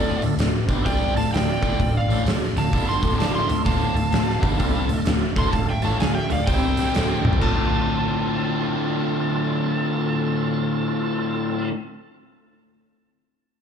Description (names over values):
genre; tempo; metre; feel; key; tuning
blues rock power trio and southern rock; 128 BPM; 4/4; swing 64% on 8ths; D minor; A4 = 442 Hz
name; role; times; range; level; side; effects
overdriven slide guitar; melody; 0.0-11.7 s; D5 to C6; -29 LUFS; right 2 dB; slapback echo
biting lead guitar; second line; 0.0-11.7 s; F4 to A5; -33 LUFS; right 2 dB; overdrive, slapback echo
overdriven tonewheel organ; sustained chords; 0.0-11.7 s; G3 to C5; -32 LUFS; right 5 dB; slow rotary speaker, chorus vibrato
distorted electric guitar; riff; 0.0-11.7 s; D2 to F4; -24 LUFS; left 2 dB; distortion, slapback echo
vintage muted fingered electric bass; bass; 0.0-11.7 s; D1 to C2; -26 LUFS; equal; none
oversized low-tuned drum kit; drums; 0.2-7.6 s; china cymbal, hi-hat, kick drum, snare drum, toms; -24 LUFS; equal; none
room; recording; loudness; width
light reverb, studio reverb; live gig heard through the venue's PA, club reverb; -19 LUFS; side -7 dB against mid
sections
0.0-7.4 A section; 7.4-11.1 B section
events
drum fill 7.2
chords
0.0 Dm; 6.5 C5; 6.9 Dm7